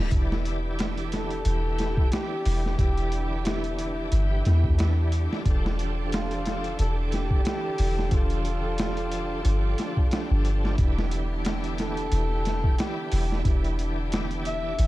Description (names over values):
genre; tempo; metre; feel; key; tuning
trip hop; 90 BPM; 4/4; swing 56% on 16ths; E phrygian; A4 = 437 Hz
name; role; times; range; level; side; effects
bright tonewheel organ; accompaniment; 0.0-14.9 s; E3 to G5; -33 LUFS; right 1 dB; chorus vibrato, slow rotary speaker, tremolo, vintage 12-bit sampler grit, tape echo
soft 808-style bass; bass; 0.0-14.9 s; D1 to E2; -26 LUFS; equal; none
bowed-like drone; texture; 0.2-14.9 s; B3 to D4; -43 LUFS; right 2 dB; none
bright studio string section; sustained chords; 0.1-14.9 s; D3 to A4; -36 LUFS; right 1 dB; none
boom bap sampler-style drum kit; drums; 0.1-14.9 s; hi-hat, kick drum, snare drum; -27 LUFS; equal; none
trumpet with bucket mute; melody; 1.1-14.9 s; E4 to E5; -34 LUFS; left 1 dB; tape echo
room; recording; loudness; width
little or no reverb; dark, warm production; -23 LUFS; side -17 dB against mid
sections
0.0-14.9 A section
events
none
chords
0.1 Em7; 5.5 F6/E; 10.8 Em7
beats
| 0.12 0.79 1.46 2.12 | 2.79 3.46 4.12 4.79 | 5.46 6.12 6.79 7.46 | 8.12 8.79 9.46 10.12 | 10.79 11.46 12.12 12.79 | 13.46 14.12 14.79